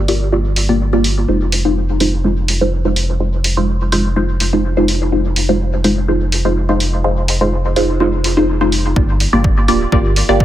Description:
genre	dub techno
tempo	125 BPM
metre	4/4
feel	straight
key	unclear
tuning	A4 = 440 Hz
part	soft dub sub bass	bass	0.0-10.4 s	D1 to G1	-17 LUFS	equal	sidechain pumping
part	filtered dub chord stab	stabs	0.1-10.4 s	Ab3 to D5	-16 LUFS	equal	phaser, sidechain pumping, dub echo
part	electronic hi-hat	drums	0.1-10.3 s	none	-20 LUFS	right 1 dB	none
part	electronic kick drum	drums	9.0-10.4 s	none	-15 LUFS	equal	none
room	light reverb, digital ambience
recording	none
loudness	-13 LUFS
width	side -12 dB against mid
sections	0.0-9.0 A section; 9.0-10.4 B section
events	none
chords	0.0 Gm7; 1.3 Fm7; 9.0 Gm7

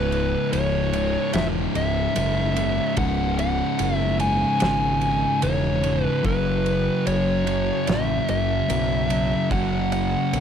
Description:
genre	stoner and doom metal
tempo	74 BPM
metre	4/4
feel	straight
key	C# minor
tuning	A4 = 439 Hz
part	fuzz lead guitar	melody	0.0-10.4 s	B4 to G#5	-25 LUFS	equal	distortion, tape echo
part	thick fuzz guitar	riff	0.0-10.4 s	C#2 to F#3	-26 LUFS	left 11 dB	distortion
part	thick fuzz guitar	riff	0.0-10.4 s	C#2 to F#3	-26 LUFS	right 10 dB	distortion
part	growling picked electric bass	bass	0.0-10.4 s	C#1 to B1	-27 LUFS	equal	overdrive
part	big rock drum kit	drums	0.1-10.4 s	kick drum, ride cymbal, snare drum	-32 LUFS	right 1 dB	none
room	little or no reverb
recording	dry, close 1970s-style studio recording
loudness	-20 LUFS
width	side -8 dB against mid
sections	0.0-10.4 A section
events	none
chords	0.0 C#m; 6.2 F#5

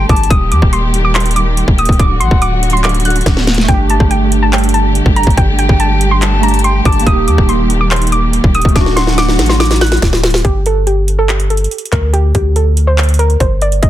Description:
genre	hip hop, trap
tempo	142 BPM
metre	4/4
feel	half-time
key	G harmonic minor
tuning	A4 = 440 Hz
part	soft round pluck	melody	0.0-13.9 s	G4 to F#6	-17 LUFS	right 1 dB	chorus, low-pass filter, digital delay
part	reedy silver concert flute	second line	0.0-2.8, 5.6-9.6 s	F#5 to A5	-23 LUFS	left 6 dB	digital delay
part	dark symphonic string section	sustained chords	0.0-10.4 s	D3 to G4	-19 LUFS	right 2 dB	none
part	long sustained 808-style bass	bass	0.0-13.9 s	D1 to Eb2	-13 LUFS	equal	none
part	trap drum kit	drums	0.1-13.9 s	handclaps, hi-hat, kick drum, rim click, snare drum	-13 LUFS	equal	overdrive
part	warbly lo-fi synth keys	accompaniment	3.6-10.5 s	A3 to G4	-19 LUFS	right 4 dB	chorus, low-pass filter
room	digital ambience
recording	dense, heavily limited modern master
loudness	-9 LUFS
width	side -12 dB against mid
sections	0.0-10.4 A section; 10.4-13.9 B section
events	drum fill 3.3-3.7, 8.8-10.4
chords	0.3 Eb; 2.0 D; 3.7 Gsus2; 7.1 Eb; 8.8 D; 10.4 Gsus2

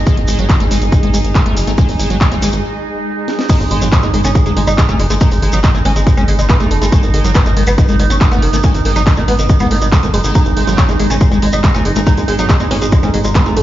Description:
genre	psychedelic trance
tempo	140 BPM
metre	4/4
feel	straight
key	unclear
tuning	A4 = 435 Hz
part	overtone-sweeping drone	sustained chords	0.0-13.6 s	D#4	-22 LUFS	right 5 dB	chorus, built-in reverb, sidechain pumping
part	plucky analog bass	bass	0.0-13.6 s	F#1 to G#1	-15 LUFS	equal	none
part	granular cloud pad	texture	0.0-2.6 s	G#4 to G#5	-26 LUFS	right 2 dB	built-in reverb, sidechain pumping
part	liquid acid bass	riff	0.1-13.6 s	F#3 to A3	-21 LUFS	moving between left 4 dB and right 4 dB	chorus, auto-pan, sidechain pumping, ping-pong delay
part	electronic kick drum	drums	0.1-13.4 s	none	-11 LUFS	equal	small room reverb
part	techno drum kit	drums	0.1-13.6 s	crash cymbal, handclaps, hi-hat, snare drum	-22 LUFS	equal	overdrive, small room reverb
part	shekere	percussion	0.1-13.5 s	none	-27 LUFS	equal	none
part	swell	sound effects	2.7-3.5 s	none	-27 LUFS	left 2 dB	none
part	oud	melody	3.5-13.6 s	D#3 to D#4	-20 LUFS	equal	phaser, sidechain pumping, digital delay
room	little or no reverb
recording	played on a big sound system in a bare room, large studio reverb, nothing above 7.5 kHz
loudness	-10 LUFS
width	side -13 dB against mid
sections	0.0-3.5 A section; 3.5-13.6 B section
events	break 2.6-3.5; swell 2.7-3.5; drum fill 3.3; drop 3.5-13.6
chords	0.0 G#5

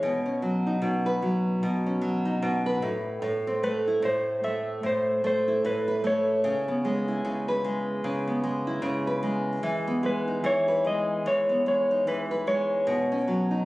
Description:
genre	pop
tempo	75 BPM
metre	4/4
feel	swing 60% on 16ths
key	E major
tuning	A4 = 440 Hz
part	clean lap steel guitar	melody	0.0-13.7 s	B4 to E5	-26 LUFS	equal	none
part	nylon-string guitar	accompaniment	0.0-13.7 s	A2 to B4	-26 LUFS	equal	none
room	light reverb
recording	recorded on a phone in the room, studio reverb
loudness	-24 LUFS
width	side -19 dB against mid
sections	0.0-13.7 A section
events	none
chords	0.0 Badd9; 2.8 Amadd9; 6.4 C#m7; 9.6 Emaj7; 12.9 Badd9

